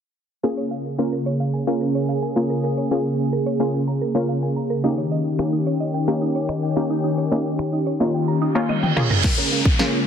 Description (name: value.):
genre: dance-pop.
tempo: 109 BPM.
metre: 4/4.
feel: straight.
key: Bb dorian.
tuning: A4 = 440 Hz.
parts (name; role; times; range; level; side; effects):
wide unison pluck; accompaniment; 0.4-10.1 s; Bb3 to Bb4; -24 LUFS; left 1 dB; sidechain pumping, low-pass filter.
sweeping resonant pad; sustained chords; 0.4-10.1 s; Db3 to Ab4; -23 LUFS; left 1 dB; chorus, sidechain pumping, low-pass filter.
mallet-like synth pluck; arpeggios; 0.4-10.0 s; Eb4 to Bb5; -30 LUFS; right 5 dB; chorus, sidechain pumping, low-pass filter, tape echo.
house drum kit; drums; 5.4-9.9 s; crash cymbal, finger snaps, kick drum, snare drum, toms; -20 LUFS; equal; soft clipping on snare.
reverse cymbal, riser and downlifter; sound effects; 8.7-10.1 s; none; -24 LUFS; right 2 dB; none.
electric guitar at the edge of break-up; riff; 9.2-10.0 s; Db4 to Bb4; -24 LUFS; right 7 dB; ensemble chorus, low-pass filter.
room: moderate lush hall reverb, RT60 2.3 s.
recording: dense, heavily limited modern master, low-pass filter.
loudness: -19 LUFS.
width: side -8 dB against mid.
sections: 0.4-9.2 A section.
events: filter sweep 0.4-9.2; reverse cymbal 8.7-9.2; drum fill 8.7-9.2, 9.2-10.1; riser 9.2-10.1.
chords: 0.4 Bbm7; 4.8 Eb7; 9.0 Bbm7.